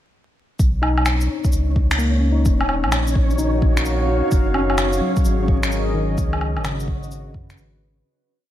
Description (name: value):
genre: future garage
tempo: 129 BPM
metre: 4/4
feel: swing 65% on 16ths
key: unclear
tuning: A4 = 440 Hz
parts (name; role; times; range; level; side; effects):
- warm sub bass; bass; 0.6-8.0 s; Eb1 to Gb2; -22 LUFS; equal; sidechain pumping
- electronic kick drum; drums; 0.6-7.5 s; none; -19 LUFS; equal; none
- electronic shaker, woodblock and finger snaps; drums; 0.6-7.7 s; none; -25 LUFS; equal; none
- flickering grainy texture; texture; 1.0-8.0 s; Db4 to Db5; -30 LUFS; left 1 dB; built-in reverb
- tine electric piano; accompaniment; 0.8-8.1 s; Db3 to Gb4; -25 LUFS; left 3 dB; sidechain pumping, ping-pong delay
- warbly tape-like pad; sustained chords; 3.3-8.0 s; Db3 to F5; -26 LUFS; right 1 dB; chorus, built-in reverb, sidechain pumping
room: light reverb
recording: vinyl crackle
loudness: -17 LUFS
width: side -12 dB against mid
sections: 0.6-8.0 groove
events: fade-out 5.6-8.0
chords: 0.6 Bmaj7; 2.5 Ebm7; 4.3 Gb6; 6.2 Db9sus4